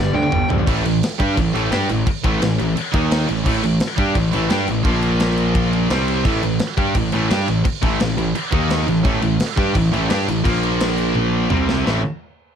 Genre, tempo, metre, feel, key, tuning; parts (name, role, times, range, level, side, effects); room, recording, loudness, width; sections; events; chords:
heavy metal; 172 BPM; 4/4; straight; A minor; A4 = 440 Hz
high-gain lead guitar; melody; 0.0-0.5 s; D5 to G5; -26 LUFS; equal; distortion, tape echo
growling trombone; second line; 0.0-0.5 s; B2 to D3; -34 LUFS; right 2 dB
crunchy overdriven guitar; riff; 0.0-12.0 s; G2 to G4; -23 LUFS; left 1 dB
high-gain distorted guitar; riff; 0.0-12.0 s; G2 to G4; -23 LUFS; right 12 dB; distortion
scooped high-gain guitar; riff; 0.0-12.0 s; G2 to G4; -24 LUFS; left 11 dB; distortion
fuzz picked electric bass; bass; 0.0-12.0 s; G1 to G2; -22 LUFS; equal; overdrive
tight metal drum kit; drums; 0.3-11.9 s; crash cymbal, kick drum, snare drum, toms; -22 LUFS; equal
little or no reverb; dark, warm production; -16 LUFS; side -8 dB against mid
0.7-11.8 A section
drum fill 0.0-0.7, 11.1-11.8
0.0 G; 0.7 A5; 2.9 D#5; 3.3 A5; 4.9 Bb5; 5.9 C5; 6.3 A5; 8.5 D#5; 8.9 A5; 10.4 Bb5; 11.5 C5; 11.8 Am